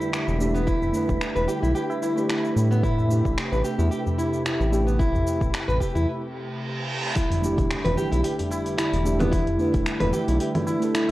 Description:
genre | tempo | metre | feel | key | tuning
organic downtempo | 111 BPM | 4/4 | swing 55% on 16ths | E minor | A4 = 440 Hz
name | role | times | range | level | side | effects
muted felt-like synth keys | accompaniment | 0.0-11.1 s | A3 to B4 | -29 LUFS | right 1 dB | chorus, sidechain pumping, ping-pong delay
warm analog pad | sustained chords | 0.0-11.1 s | C3 to G4 | -31 LUFS | left 1 dB | wide subtle chorus, sidechain pumping
nylon-string guitar | arpeggios | 0.0-11.1 s | B3 to B4 | -27 LUFS | equal | ping-pong delay, shimmer reverb
deep house drum kit | drums | 0.0-11.1 s | cabasa, congas, finger snaps, hi-hat | -30 LUFS | equal | overdrive
tabla | percussion | 0.0-11.1 s | none | -32 LUFS | equal | none
wind-like tuned noise texture | texture | 0.0-6.1 s | B4 | -40 LUFS | right 3 dB | built-in reverb, shimmer reverb
round analog bass | bass | 0.3-10.4 s | E1 to A2 | -24 LUFS | equal | tube saturation, sidechain pumping
electronic kick drum | drums | 0.7-9.8 s | none | -26 LUFS | equal | overdrive
reverse cymbal and impact | sound effects | 6.4-9.3 s | none | -32 LUFS | right 1 dB | none
room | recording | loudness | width
moderate digital room reverb, RT60 1.1 s | worn, warbling old tape, cassette tape, warbly pitch drift | -21 LUFS | side -16 dB against mid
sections
0.0-7.2 A section; 7.2-11.1 B section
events
break 6.1-7.2; reverse cymbal 6.4-7.2; impact 7.2-9.3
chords
0.0 Em7; 2.8 Am7; 7.2 Em7

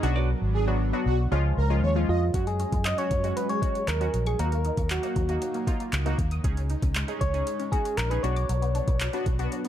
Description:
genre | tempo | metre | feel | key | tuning
dance-pop | 117 BPM | 4/4 | straight | F# major | A4 = 440 Hz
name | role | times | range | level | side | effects
glassy wavetable pluck | accompaniment | 0.0-9.6 s | E#3 to G#4 | -33 LUFS | left 1 dB | chorus, sidechain pumping
chorused pulse-width pad | sustained chords | 0.0-9.7 s | E#3 to D#4 | -35 LUFS | right 1 dB | sidechain pumping
vintage muted fingered electric bass | bass | 0.0-9.5 s | G#1 to F#2 | -26 LUFS | equal | sidechain pumping
smooth R&B drum kit | drums | 0.0-9.7 s | handclaps, hi-hat, kick drum | -29 LUFS | equal | none
soft supersaw | melody | 0.5-2.2 s | F#4 to D#5 | -33 LUFS | right 2 dB | sidechain pumping, digital delay
soft struck synth lead | melody | 2.1-9.7 s | E#4 to D#5 | -30 LUFS | equal | chorus, digital delay
resonant blip pluck | arpeggios | 2.3-9.7 s | F#3 to D#6 | -38 LUFS | right 1 dB | phaser, sidechain pumping, digital delay
room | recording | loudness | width
little or no reverb | none | -24 LUFS | side -11 dB against mid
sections
0.0-2.3 A section; 2.3-9.7 B section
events
drop 0.0-2.3; silent gap 0.3-2.3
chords
0.0 Bm; 1.3 C#; 2.3 F#sus2; 4.4 D#m; 6.4 C#sus2; 8.2 Bm

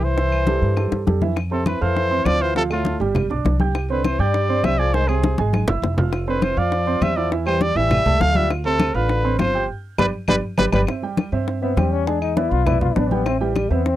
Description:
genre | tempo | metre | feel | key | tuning
Afro-Cuban jazz | 202 BPM | 4/4 | straight | C major | A4 = 443 Hz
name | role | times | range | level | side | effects
clear trumpet | melody | 0.0-10.8 s | F4 to F5 | -22 LUFS | right 1 dB | none
clear trombone | second line | 0.0-14.0 s | A2 to F4 | -26 LUFS | left 8 dB | none
warm upright piano | accompaniment | 0.0-14.0 s | E3 to Ab6 | -25 LUFS | right 6 dB | none
upright bass | bass | 0.0-14.0 s | F1 to G2 | -22 LUFS | equal | none
congas | percussion | 0.0-14.0 s | none | -24 LUFS | left 1 dB | none
bongos | percussion | 0.2-14.0 s | none | -26 LUFS | left 6 dB | none
claves | percussion | 0.3-13.7 s | none | -35 LUFS | left 7 dB | none
room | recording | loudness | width
little or no reverb | dry, close 1970s-style studio recording | -17 LUFS | side -13 dB against mid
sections
0.0-1.4 A section; 1.4-10.9 B section; 10.9-14.0 C section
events
drum fill 0.9-1.4, 5.4-6.1, 9.7-10.9; band accent 9.7-10.9; trombone solo 10.9-14.0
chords
0.0 C6; 1.4 Fmaj7; 2.6 Dm; 3.2 G; 3.7 Csus2; 4.9 Caug; 6.1 F5; 7.3 Am7; 7.9 A7; 8.5 Dm7; 9.7 G; 10.9 C; 12.1 E7; 13.3 Am7

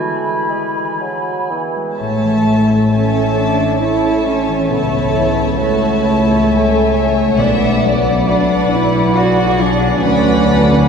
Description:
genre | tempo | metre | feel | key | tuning
classical, slow romantic movement for symphony orchestra | 67 BPM | 3/4 | uneven beats, rubato | A major | A4 = 435 Hz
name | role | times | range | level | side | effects
bright oboe | second line | 0.0-1.6 s | G#5 | -30 LUFS | equal | none
hollow flute section | second line | 0.0-1.6 s | B5 | -26 LUFS | equal | none
mellow clarinet | second line | 0.0-1.0 s | E4 | -28 LUFS | equal | none
warm bassoon | accompaniment | 0.0-2.0 s | E3 to A3 | -27 LUFS | right 3 dB | none
concert harp | arpeggios | 0.0-10.9 s | A2 to B5 | -20 LUFS | left 4 dB | none
warm chamber violin section | second line | 2.0-10.9 s | E5 to B5 | -20 LUFS | left 4 dB | none
dark symphonic viola section | accompaniment | 2.0-10.9 s | A4 to D5 | -19 LUFS | right 3 dB | none
dark studio cello section | bass | 2.0-10.9 s | A3 to F#4 | -16 LUFS | right 1 dB | none
warm symphonic double bass section | bass | 2.0-10.9 s | A1 to D2 | -19 LUFS | right 1 dB | none
warm studio violin section | melody | 2.9-10.9 s | E4 to E5 | -22 LUFS | left 4 dB | none
timpani | percussion | 7.4-8.7 s | B2 | -28 LUFS | left 1 dB | none
room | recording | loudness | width
wet cathedral reverb, RT60 5.4 s | heard from further back in the room | -12 LUFS | side -6 dB against mid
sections
0.0-2.0 A section; 2.0-10.9 B section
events
none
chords
0.0 E; 2.0 A; 4.7 A/C#; 7.4 Bm; 10.0 Bm/D

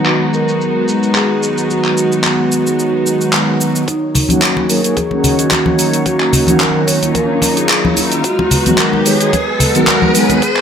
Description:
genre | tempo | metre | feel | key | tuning
nu-disco, nu disco | 110 BPM | 4/4 | swing 54% on 16ths | Eb minor | A4 = 440 Hz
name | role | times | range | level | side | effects
vibraphone with soft mallets | melody | 0.0-10.6 s | Eb4 to Db5 | -19 LUFS | right 1 dB | low-pass filter, dub echo
mellow synth brass | accompaniment | 0.0-10.4 s | Eb3 to Ab4 | -16 LUFS | equal | chorus
clear studio string section | sustained chords | 0.0-10.6 s | Eb3 to Db5 | -21 LUFS | left 1 dB | sidechain pumping, low-pass filter
pop drum kit | drums | 0.1-10.6 s | cabasa, handclaps, hi-hat | -16 LUFS | equal | overdrive
electronic kick drum | drums | 3.9-10.5 s | none | -28 LUFS | left 1 dB | none
riser | sound effects | 5.4-10.6 s | none | -20 LUFS | equal | none
congas | percussion | 4.1-10.4 s | none | -18 LUFS | left 2 dB | none
room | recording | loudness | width
light reverb | low-pass filter | -11 LUFS | side -7 dB against mid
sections
0.0-3.9 A section; 3.9-10.6 B section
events
build-up 3.9-10.6; filter sweep on string section 3.9-10.6; filter sweep on vibraphone 3.9-10.6; riser 5.4-10.6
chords
0.0 Abm7; 3.9 Ebm7; 8.2 Abm7

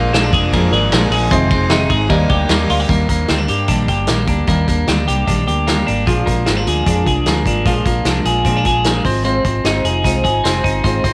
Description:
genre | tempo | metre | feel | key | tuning
jangly indie pop | 151 BPM | 4/4 | straight | Eb major | A4 = 444 Hz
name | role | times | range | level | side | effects
dark upright piano | accompaniment | 0.0-2.9 s | Eb4 to Eb5 | -27 LUFS | equal | cassette tape
fingerpicked steel-string acoustic guitar | accompaniment | 0.0-11.1 s | F2 to Eb5 | -23 LUFS | equal | cassette tape
twelve-string electric guitar | arpeggios | 0.0-11.1 s | F3 to Ab4 | -20 LUFS | equal | cassette tape
vintage muted fingered electric bass | bass | 0.0-11.1 s | F1 to Bb2 | -22 LUFS | equal | none
vintage drum kit | drums | 0.1-11.1 s | hi-hat, kick drum, ride cymbal, snare drum | -21 LUFS | equal | cassette tape
room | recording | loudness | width
little or no reverb | home recording on cassette | -15 LUFS | mono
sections
0.0-2.9 A section; 2.9-11.1 B section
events
none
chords
0.0 Bb7; 1.3 Fm7; 2.1 Ebmaj7; 6.1 Bb7; 9.0 Fm7

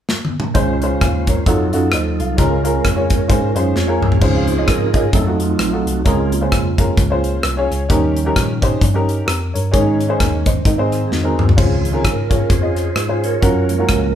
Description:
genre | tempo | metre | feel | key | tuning
uptempo gospel | 131 BPM | 4/4 | swing 58% on 8ths | Db major | A4 = 439 Hz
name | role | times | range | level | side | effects
modern studio drum kit | drums | 0.1-14.0 s | crash cymbal, hi-hat, kick drum, rim click, snare drum, toms | -17 LUFS | left 1 dB | none
warm upright piano | accompaniment | 0.5-14.0 s | Ab2 to Ab5 | -20 LUFS | left 1 dB | none
percussive tonewheel organ | sustained chords | 0.5-14.2 s | Db3 to F5 | -21 LUFS | right 4 dB | fast rotary speaker
mellow tine electric piano | bass | 0.6-14.2 s | Bb1 to Bb2 | -20 LUFS | equal | medium stereo tremolo
room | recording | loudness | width
light reverb | band playing live in one room | -14 LUFS | side -10 dB against mid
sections
0.5-4.2 A section; 4.2-14.2 B section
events
drum fill 0.1-0.5, 3.8-4.2, 11.1-11.6; tonewheel organ solo 4.2-14.2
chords
0.0 N.C.; 0.5 Dbmaj7; 1.5 F7b9; 2.4 Bbm7/Db; 4.2 Dbmaj7; 5.1 F7b9; 6.1 Bbm7/Db; 7.9 Eb7; 9.7 Absus4; 10.7 Ab; 11.6 Dbmaj7; 13.4 Gbmaj7

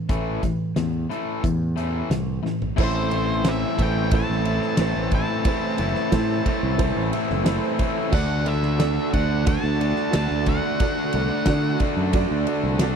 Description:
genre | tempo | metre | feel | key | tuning
classic rock | 90 BPM | 4/4 | straight | A dorian | A4 = 440 Hz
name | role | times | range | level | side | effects
biting overdriven guitar | riff | 0.0-13.0 s | A2 to F#4 | -28 LUFS | left 14 dB | none
raw garage guitar | riff | 0.0-13.0 s | A2 to D4 | -29 LUFS | right 14 dB | overdrive
growling fingered electric bass | bass | 0.1-12.9 s | F#1 to D3 | -25 LUFS | equal | overdrive
huge arena drum kit | drums | 0.1-13.0 s | crash cymbal, hi-hat, kick drum, ride cymbal, snare drum, toms | -26 LUFS | equal | none
octave-fuzz lead guitar | melody | 2.8-11.8 s | C5 to A5 | -30 LUFS | equal | distortion, slapback echo
honky-tonk upright piano | accompaniment | 2.8-13.0 s | E4 to D5 | -32 LUFS | right 12 dB | none
overdriven electric guitar | riff | 2.8-13.0 s | A2 to D4 | -28 LUFS | right 1 dB | none
room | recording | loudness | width
little or no reverb | dry, close 1970s-style studio recording | -20 LUFS | side -7 dB against mid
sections
0.0-2.8 A section; 2.8-13.0 B section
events
drum fill 2.5-2.8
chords
0.0 A5; 2.8 Am; 8.1 D

